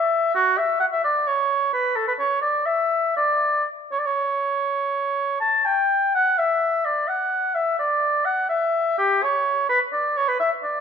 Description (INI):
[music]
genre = classical, baroque-style fantasia for unaccompanied oboe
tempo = 83 BPM (dotted quarters)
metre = 12/8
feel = uneven beats, rubato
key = D major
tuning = A4 = 443 Hz
[part]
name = warm oboe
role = solo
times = 0.0-10.8 s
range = F#4 to A5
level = -19 LUFS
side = equal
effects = none
[sound]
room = moderate recital hall reverb, RT60 1.5 s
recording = minimal, uncompressed stereo recording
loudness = -19 LUFS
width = side -7 dB against mid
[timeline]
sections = 0.0-6.1 A section; 6.1-10.8 B section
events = none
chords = none